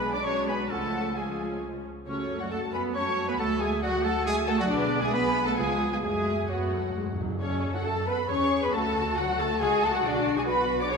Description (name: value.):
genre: quick classical-period movement for symphony orchestra.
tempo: 136 BPM.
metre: 3/4.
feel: straight.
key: F# minor.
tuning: A4 = 440 Hz.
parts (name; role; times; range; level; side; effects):
muted studio violin section; melody; 0.0-11.0 s; C#5 to D6; -32 LUFS; left 2 dB; none.
dark clarinet; second line; 0.0-11.0 s; C#4 to D5; -35 LUFS; left 2 dB; none.
hollow flute section; second line; 0.0-11.0 s; A4 to D6; -35 LUFS; equal; none.
muted studio violin section; second line; 0.0-11.0 s; C#4 to D5; -35 LUFS; left 5 dB; none.
muted studio viola section; accompaniment; 0.0-11.0 s; E#3 to D5; -34 LUFS; right 1 dB; none.
mellow French horn section; sustained chords; 0.0-10.9 s; C#3 to G#4; -33 LUFS; left 3 dB; none.
clear trumpet; stabs; 0.0-7.2 s; C#4 to D5; -34 LUFS; right 3 dB; none.
muted studio cello section; bass; 0.0-11.0 s; C#3 to A4; -33 LUFS; right 3 dB; none.
muted studio double bass section; bass; 0.0-11.0 s; B1 to F#2; -37 LUFS; right 3 dB; none.
timpani; percussion; 6.0-7.4 s; F#2; -35 LUFS; equal; none.
room: wet concert hall reverb, RT60 1.9 s.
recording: minimal, uncompressed stereo recording.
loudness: -24 LUFS.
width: side -5 dB against mid.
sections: 0.0-7.4 A section; 7.4-11.0 A section.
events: timpani fill 6.0-7.4.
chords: 0.0 G#dim/B; 0.7 C#; 2.1 F#m; 3.4 D; 4.7 G#dim/B; 5.6 C#7; 6.0 F#m; 8.7 D; 10.0 Bm6.